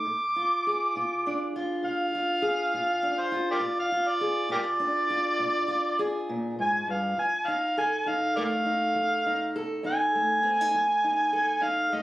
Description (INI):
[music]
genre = acoustic country blues, solo or duo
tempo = 67 BPM (dotted quarters)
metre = 12/8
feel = straight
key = unclear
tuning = A4 = 441 Hz
[part]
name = overdriven harmonica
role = melody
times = 0.0-12.0 s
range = G4 to D6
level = -25 LUFS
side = equal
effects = plate reverb
[part]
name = fingerpicked steel-string acoustic guitar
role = accompaniment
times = 0.0-12.0 s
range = F2 to A4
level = -31 LUFS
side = equal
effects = none
[sound]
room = moderate studio reverb, RT60 0.7 s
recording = recorded on a phone in the room, studio ambience, vinyl crackle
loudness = -24 LUFS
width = side -16 dB against mid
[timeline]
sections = 0.0-12.0 A section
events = harmonica solo 0.0-12.0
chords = 0.1 Bb7; 7.2 F7